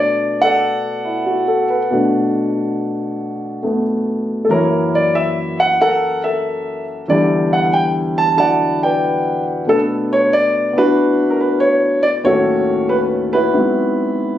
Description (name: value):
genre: jazz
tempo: 93 BPM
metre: 4/4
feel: swing 68% on 8ths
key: B minor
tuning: A4 = 440 Hz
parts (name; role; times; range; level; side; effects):
- warm concert grand piano; solo; 0.0-14.4 s; D#2 to A5; -14 LUFS; equal; none
room: light reverb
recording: recorded on a phone in the room, studio reverb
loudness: -14 LUFS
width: side -12 dB against mid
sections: 0.0-14.4 A section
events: none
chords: 0.0 Bm7; 4.5 F#7#9; 7.1 Em9; 9.7 Bm7; 12.2 D#m7b5; 13.5 G#7alt